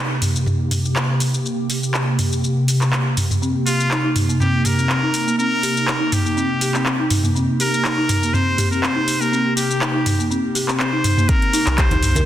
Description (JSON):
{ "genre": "afro house", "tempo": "122 BPM", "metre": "4/4", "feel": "swing 54% on 16ths", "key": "C minor pentatonic", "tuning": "A4 = 440 Hz", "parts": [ { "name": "ethereal airy pad", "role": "sustained chords", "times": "0.0-12.3 s", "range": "C3 to G4", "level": "-22 LUFS", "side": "equal", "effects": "ensemble chorus, built-in reverb, sidechain pumping" }, { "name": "afro-pop drum kit", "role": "drums", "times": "0.2-12.3 s", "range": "handclaps, hi-hat, shaker, toms", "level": "-21 LUFS", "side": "equal", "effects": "none" }, { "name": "folk marimba with medium hard mallets", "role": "arpeggios", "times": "3.4-12.3 s", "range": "Bb3 to Bb4", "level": "-22 LUFS", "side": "left 1 dB", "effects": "vintage 12-bit sampler grit, sidechain pumping, tape echo" }, { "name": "trumpet with straight mute", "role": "melody", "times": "3.7-12.3 s", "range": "F4 to C5", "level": "-22 LUFS", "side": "equal", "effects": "tape echo" }, { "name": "electronic kick drum", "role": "drums", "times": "11.3-11.9 s", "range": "none", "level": "-18 LUFS", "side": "equal", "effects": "none" }, { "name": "round analog bass", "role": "bass", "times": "11.7-12.3 s", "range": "C2", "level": "-20 LUFS", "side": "equal", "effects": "sidechain pumping" }, { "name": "congas", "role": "percussion", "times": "11.9-12.2 s", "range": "none", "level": "-22 LUFS", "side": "right 1 dB", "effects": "none" } ], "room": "wet recital hall reverb, RT60 1.3 s", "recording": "dense, heavily limited modern master", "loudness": "-16 LUFS", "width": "side -12 dB against mid", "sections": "0.0-11.3 A section", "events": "none", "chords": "0.0 Cm7" }